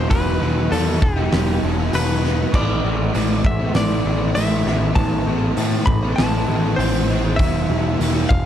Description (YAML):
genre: rock, shoegaze and dream pop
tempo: 99 BPM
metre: 4/4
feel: straight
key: unclear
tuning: A4 = 440 Hz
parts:
  - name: direct-recorded clean electric guitar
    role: melody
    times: 0.0-8.5 s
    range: G4 to B5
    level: -26 LUFS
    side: left 2 dB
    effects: spring reverb, analog delay
  - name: crunchy overdriven guitar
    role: riff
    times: 0.0-8.3 s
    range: A2 to E4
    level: -21 LUFS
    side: equal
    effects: analog chorus
  - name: overdriven picked electric bass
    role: bass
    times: 0.0-8.5 s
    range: E1 to A2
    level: -21 LUFS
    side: equal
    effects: none
  - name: loose indie drum kit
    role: drums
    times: 0.1-8.4 s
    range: crash cymbal, hi-hat, kick drum, snare drum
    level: -23 LUFS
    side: equal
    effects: none
room: studio reverb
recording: dark, warm production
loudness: -16 LUFS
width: side -10 dB against mid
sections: 0.0-8.5 A section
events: none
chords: 0.0 Em; 2.5 Am; 7.4 Em